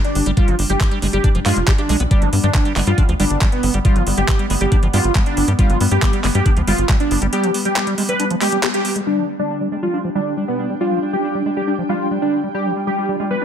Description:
psychedelic trance; 138 BPM; 4/4; straight; G major; A4 = 441 Hz
wide unison lead; melody; 0.0-13.4 s; B3 to B4; -21 LUFS; equal; phaser, sidechain pumping, tape echo
pulsing gated texture; sustained chords; 0.0-13.4 s; G3 to F4; -24 LUFS; equal; chorus, built-in reverb, sidechain pumping
garage drum kit; drums; 0.0-9.0 s; handclaps, hi-hat; -23 LUFS; right 1 dB; low-pass filter on hats, low-pass filter on cymbals, low-pass filter on snare
tight sequencer bass; bass; 0.2-7.3 s; F1 to G2; -18 LUFS; equal
liquid acid bass; riff; 0.3-13.4 s; F3 to G4; -24 LUFS; equal; chorus, auto-pan, cassette tape, sidechain pumping, tape echo
electronic kick drum; drums; 0.4-7.0 s; -16 LUFS; equal
ethereal airy pad; texture; 9.7-13.4 s; D4 to G5; -28 LUFS; left 1 dB; ensemble chorus, built-in reverb, sidechain pumping
light reverb; -15 LUFS; side -9 dB against mid
0.0-9.1 A section; 9.1-13.4 B section
break 7.3-9.1; band accent 8.6; filter sweep on acid bass 9.1-13.4
0.0 G5

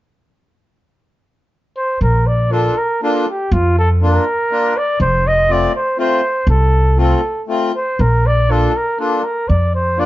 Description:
alpine folk, alpine dance band; 120 BPM; 3/4; rubato; Bb major; A4 = 440 Hz
warm flugelhorn; melody; 1.8-10.1 s; F4 to Eb5; -17 LUFS; equal; plate reverb
upright bass; bass; 2.0-10.1 s; F1 to F2; -14 LUFS; equal
accordion; accompaniment; 2.5-10.1 s; A3 to F4; -18 LUFS; left 2 dB
light reverb; dark, warm production, nothing above 7.6 kHz; -13 LUFS; side -15 dB against mid
0.5-2.0 A section; 2.0-10.1 B section
0.5 N.C.; 2.0 Bb; 5.0 F; 8.0 Bb

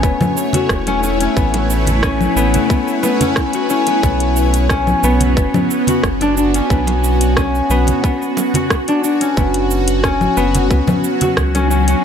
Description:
organic downtempo; 90 BPM; 4/4; straight; A4 = 440 Hz
bowed-like drone; sustained chords; 0.0-12.0 s; F#3 to C#5; -20 LUFS; equal; built-in reverb, phaser, sidechain pumping
concert harp; arpeggios; 0.0-12.0 s; B3 to F#4; -17 LUFS; left 3 dB; ping-pong delay
round analog bass; bass; 0.0-12.0 s; E1 to C#2; -18 LUFS; right 1 dB; tube saturation, sidechain pumping
afro-pop drum kit; drums; 0.0-12.0 s; cabasa, congas, hi-hat, rim click; -21 LUFS; left 1 dB
electronic kick drum; drums; 0.0-11.5 s; -18 LUFS; equal
congas and bongos; percussion; 0.2-11.7 s; -22 LUFS; right 3 dB
little or no reverb; -13 LUFS; side -8 dB against mid
0.0-12.0 A section
0.0 A; 4.0 Bmadd9; 9.4 F#5

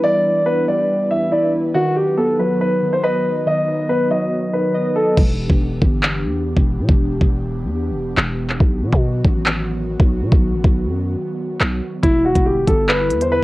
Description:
hip hop, drill; 140 BPM; 4/4; half-time; E minor; A4 = 439 Hz
dark concert grand piano; melody; 0.0-5.1, 12.0-13.4 s; E4 to E5; -17 LUFS; equal; low-pass filter, plate reverb, tape echo
warbly lo-fi synth keys; accompaniment; 0.0-5.2 s; D#3 to D#5; -21 LUFS; right 1 dB; chorus, low-pass filter, cassette tape, plate reverb
airy breathy pad; sustained chords; 0.0-13.4 s; D3 to B4; -26 LUFS; equal; chorus, cassette tape
growling 808-style bass; bass; 5.2-13.4 s; E1 to B2; -21 LUFS; equal
drill drum kit; drums; 5.2-13.3 s; crash cymbal, handclaps, hi-hat, kick drum; -16 LUFS; equal; cassette tape
light reverb; home recording on cassette; -15 LUFS; side -18 dB against mid
0.0-5.2 A section; 5.2-13.4 B section
hi-hats muted 5.2-12.0
0.0 Em7; 1.7 B; 5.2 Em7; 8.6 B; 12.0 Em7

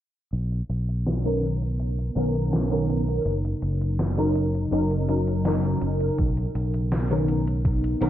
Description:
vaporwave; 82 BPM; 4/4; straight; A4 = 436 Hz
warbly tape-like pad; sustained chords; 1.7-8.1 s; C#3 to A#4; -32 LUFS; left 1 dB; chorus, built-in reverb, phaser
fingered electric bass; bass; 0.3-8.1 s; F#1 to B1; -25 LUFS; equal
gated 80s digital drum machine; drums; 0.3-8.1 s; hi-hat, snare drum; -30 LUFS; equal; gated reverb, gated reverb snare, overdrive, low-pass filter on hats, vintage 12-bit sampler grit, low-pass filter on snare, low-pass filter on room
FM electric piano with soft pad layer; accompaniment; 1.2-8.1 s; D#3 to A#4; -26 LUFS; equal; phaser, ensemble chorus, cassette tape, tape echo
electronic kick drum; drums; 6.2-7.8 s; -25 LUFS; equal; vintage 12-bit sampler grit
light reverb, digital ambience; dark, warm production, cassette tape, low-pass filter; -22 LUFS; side -12 dB against mid
0.3-8.1 A section
filter sweep on drum 0.3-8.1; filter sweep on ambient pad 0.3-8.1; filter sweep 0.3-8.1
0.3 Bmaj9; 3.3 F#6; 6.2 Bmaj9

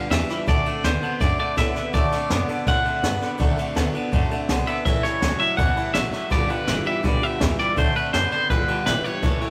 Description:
rockabilly; 164 BPM; 4/4; straight; D mixolydian; A4 = 440 Hz
twangy electric guitar; melody; 0.0-9.5 s; B4 to F#5; -27 LUFS; equal; tremolo, digital delay
bright upright piano; accompaniment; 0.0-9.5 s; C#5 to D6; -38 LUFS; equal
picked steel-string acoustic guitar; accompaniment; 0.0-9.5 s; G2 to A4; -35 LUFS; equal
twangy electric guitar; riff; 0.0-9.5 s; G2 to B3; -31 LUFS; equal; phaser
upright bass; bass; 0.1-9.4 s; G1 to A2; -30 LUFS; equal
jazz brush drum kit; drums; 0.1-9.5 s; kick drum, ride cymbal, snare drum; -26 LUFS; equal
moderate stone room reverb, RT60 1.1 s; rough rehearsal-room recording; -22 LUFS; mono
0.0-9.5 A section
0.5 D7; 4.9 A7; 6.3 G7; 7.8 D7; 8.5 G7

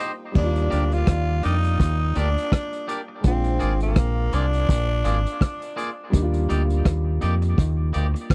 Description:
lovers rock reggae; 83 BPM; 4/4; swing 57% on 16ths; Eb major; A4 = 440 Hz
warm grand piano; accompaniment; 0.0-8.3 s; G3 to D5; -33 LUFS; equal; tape echo
twangy electric guitar; stabs; 0.0-8.2 s; Bb3 to Eb5; -34 LUFS; equal; tape echo
vintage drum kit; drums; 0.0-8.3 s; crash cymbal, hi-hat, kick drum, rim click; -23 LUFS; equal
raspy tenor saxophone; melody; 0.4-5.8 s; Bb3 to F4; -31 LUFS; equal; tape echo
deep dub fingered electric bass; bass; 0.4-8.1 s; Ab1 to F2; -24 LUFS; equal
little or no reverb; dry, close 1970s-style studio recording, lossy compression artefacts; -22 LUFS; mono
0.4-8.3 A section
0.4 Ebmaj7; 3.2 Bb7; 6.1 Ebmaj7

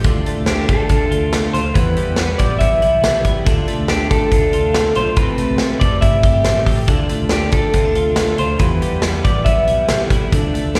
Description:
jangly indie pop; 140 BPM; 4/4; straight; D dorian; A4 = 440 Hz
electric guitar through a small old amp; accompaniment; 0.0-10.8 s; C3 to A4; -31 LUFS; equal; lush chorus, slapback echo
warm analog keys; accompaniment; 0.0-10.8 s; C4 to B4; -32 LUFS; equal
twelve-string electric guitar; arpeggios; 0.0-10.8 s; E2 to G4; -25 LUFS; equal; analog chorus, slapback echo
vintage muted fingered electric bass; bass; 0.0-10.8 s; F1 to E2; -23 LUFS; equal
modern studio drum kit; drums; 0.0-10.8 s; hi-hat, kick drum, snare drum; -20 LUFS; equal
electric guitar through a small old amp; melody; 0.5-10.8 s; G4 to E5; -21 LUFS; equal; spring reverb, slapback echo, tape echo
studio ambience; live gig heard through the venue's PA, recital hall reverb; -16 LUFS; mono
0.0-10.8 A section
0.0 Dm; 1.8 Em; 3.5 Dm; 5.2 C6; 6.9 Dm; 8.6 Em

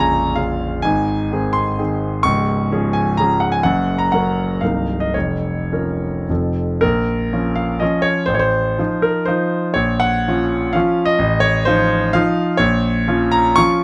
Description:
classical, romantic triple-time dance for piano with dotted rhythms; 100-136 BPM; 3/4; rubato; Bb minor; A4 = 440 Hz
warm concert grand piano; solo; 0.0-13.8 s; Bb0 to Db6; -18 LUFS; equal
moderate studio ambience, RT60 0.4 s; -18 LUFS; mono
0.0-6.8 A section; 6.8-13.8 B section
0.0 Bbm; 0.8 Ab; 2.3 Db; 3.6 Gb; 4.6 Cm7b5; 5.1 Bbm/F; 6.3 F; 6.8 Bbm; 8.3 F7/A; 9.8 Bbm; 11.2 F7/A; 12.6 Bbm

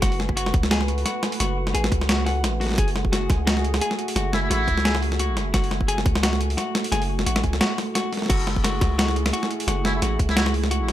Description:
half-time drum and bass; 174 BPM; 4/4; swing 55% on 16ths, half-time; F# minor; A4 = 440 Hz
dark analog pad; sustained chords; 0.0-10.9 s; A3 to B4; -31 LUFS; right 2 dB; chorus, sidechain pumping
clean electric guitar; arpeggios; 0.0-10.9 s; F#4 to F#5; -29 LUFS; left 3 dB; vintage 12-bit sampler grit, tape echo
long sustained 808-style bass; bass; 0.0-10.9 s; F#1 to C#2; -25 LUFS; equal
boom bap sampler-style drum kit; drums; 0.0-10.9 s; crash cymbal, hi-hat, snare drum; -24 LUFS; equal; overdrive
electronic kick drum; drums; 0.0-10.3 s; -23 LUFS; equal
trumpet with metal mute; melody; 4.3-5.0, 9.9-10.4 s; E4; -29 LUFS; right 1 dB; tape echo
light reverb, digital ambience; -20 LUFS; side -12 dB against mid
0.0-10.9 A section
0.0 F#madd9

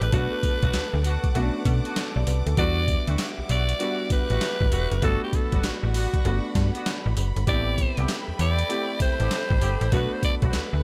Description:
R&B, new jack swing; 98 BPM; 4/4; swing 64% on 16ths; A dorian; A4 = 441 Hz
breathy alto saxophone; melody; 0.0-10.8 s; F#4 to D5; -32 LUFS; equal
warm concert grand piano; accompaniment; 0.0-10.8 s; G3 to D5; -35 LUFS; equal
warm studio string section; sustained chords; 0.0-10.8 s; G3 to D6; -40 LUFS; equal
mellow horn section; stabs; 0.0-10.6 s; G3 to G4; -38 LUFS; equal
slap-like FM bass; bass; 0.0-10.8 s; E1 to B2; -27 LUFS; equal
boom bap sampler-style drum kit; drums; 0.0-10.7 s; handclaps, hi-hat, kick drum, snare drum, tambourine; -28 LUFS; equal; gated reverb
small room ambience; -24 LUFS; mono
0.0-10.8 A section
0.1 Bm7; 2.6 Em9; 5.0 Gmaj7; 7.5 Am9; 9.9 Bm7

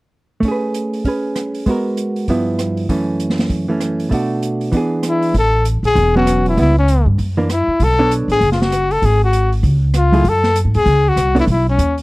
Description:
jazz, small-group swing and bop; 196 BPM; 4/4; swing 62% on 8ths; A major; A4 = 443 Hz
hollow-body jazz guitar; accompaniment; 0.4-11.5 s; F#2 to C#5; -17 LUFS; right 1 dB
open jazz drum kit; drums; 0.4-12.0 s; hi-hat, kick drum, rim click, snare drum; -24 LUFS; equal
clear trumpet; melody; 5.1-12.0 s; C#4 to A4; -16 LUFS; left 2 dB
upright bass; bass; 5.3-12.0 s; E1 to G#2; -15 LUFS; equal
small room ambience; dry, close 1970s-style studio recording; -13 LUFS; side -21 dB against mid
0.4-5.3 A section; 5.3-12.0 B section
0.4 Amaj9; 1.7 G#m9; 2.3 G6; 2.9 F#m7; 4.1 Bm7; 4.7 E7; 5.3 A69; 6.6 C#m7b5; 7.2 F#7b13; 7.8 Bm9; 9.0 F#sus2/G#; 9.6 C#; 10.3 F#madd9; 11.5 Bsus2

